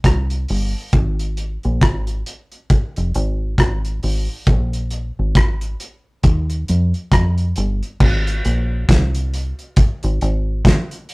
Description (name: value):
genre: lovers rock reggae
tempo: 68 BPM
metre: 4/4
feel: swing 59% on 16ths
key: Ab major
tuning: A4 = 442 Hz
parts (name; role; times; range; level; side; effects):
- deep dub fingered electric bass; bass; 0.0-10.6 s; F1 to F2; -19 LUFS; equal; none
- cloth-damped thuddy drum kit; drums; 0.0-11.1 s; crash cymbal, hi-hat, kick drum, rim click, snare drum; -16 LUFS; equal; none
room: moderate studio reverb, RT60 0.5 s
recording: rough rehearsal-room recording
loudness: -16 LUFS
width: side -26 dB against mid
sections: 0.0-8.0 A section; 8.0-11.1 B section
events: none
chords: none